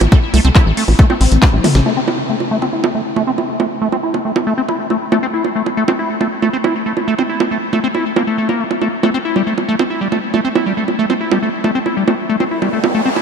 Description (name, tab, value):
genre	psychedelic trance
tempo	138 BPM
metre	4/4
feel	straight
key	A phrygian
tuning	A4 = 440 Hz
part	tight sequencer bass	bass	0.0-1.8 s	A1 to C2	-12 LUFS	equal	none
part	techno drum kit	drums	0.0-13.2 s	bongos, handclaps, hi-hat, snare drum, toms	-18 LUFS	right 4 dB	none
part	liquid acid bass	riff	0.1-13.2 s	G3 to E4	-16 LUFS	moving between left 6 dB and right 3 dB	chorus, auto-pan, sidechain pumping, ping-pong delay
part	electronic kick drum	drums	0.1-1.5 s	none	-9 LUFS	equal	none
part	resonant blip pluck	second line	0.4-1.1 s	none	barely audible	none	none
part	riser	sound effects	12.5-13.2 s	none	-21 LUFS	right 3 dB	none
room	wet huge ambient reverb, RT60 8.0 s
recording	dreamy mix soaked in reverb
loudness	-13 LUFS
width	side -6 dB against mid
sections	0.0-1.9 A section; 1.9-13.2 B section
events	drop 0.0-1.9; drum fill 1.4-1.9; band accent 1.8; filter sweep on acid bass 1.9-13.2; riser 12.5-13.2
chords	0.0 A5